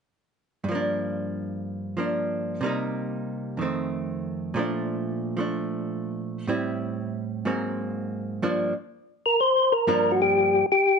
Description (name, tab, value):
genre	jazz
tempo	124 BPM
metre	4/4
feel	swing 69% on 8ths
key	G minor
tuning	A4 = 440 Hz
part	archtop guitar, miked and amplified	accompaniment	0.6-10.6 s	F2 to E4	-27 LUFS	right 2 dB	none
part	percussive tonewheel organ	melody	9.3-11.0 s	F#4 to C5	-19 LUFS	left 2 dB	slow rotary speaker
room	light reverb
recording	nothing above 10.8 kHz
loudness	-24 LUFS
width	side -5 dB against mid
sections	0.7-8.4 A section; 8.4-11.0 B section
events	none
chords	0.7 Gm7; 2.6 Cm7; 3.6 F7; 4.5 Bbmaj7; 6.5 Am7; 7.5 Ab9; 8.4 Gm7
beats	| 0.66 1.15 1.63 2.12 | 2.60 3.09 3.58 4.06 | 4.54 5.03 5.51 6.00 | 6.49 6.97 7.45 7.94 | 8.42 8.90 9.39 9.87 | 10.36 10.84